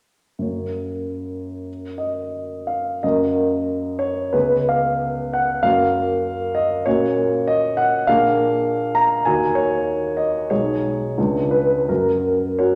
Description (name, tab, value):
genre	classical, romantic character piece for solo piano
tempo	79-103 BPM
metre	2/4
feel	rubato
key	F# major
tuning	A4 = 440 Hz
part	warm baby grand piano	solo	0.4-12.8 s	B1 to A#5	-20 LUFS	equal	none
room	wet recital hall reverb, RT60 1.7 s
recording	none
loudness	-20 LUFS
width	mono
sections	0.4-3.0 A section; 3.0-12.8 B section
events	none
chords	0.4 F#; 4.3 C#7; 5.7 F#; 6.9 F#/A#; 8.1 A#7; 9.3 D#m; 10.5 G#m/B; 11.2 C#7b9; 11.9 F#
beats	| 0.42 1.07 | 1.68 2.32 | 3.03 3.67 | 4.34 5.03 | 5.65 6.25 | 6.86 7.47 | 8.07 8.66 | 9.26 9.87 | 10.50 11.17 | 11.89 12.60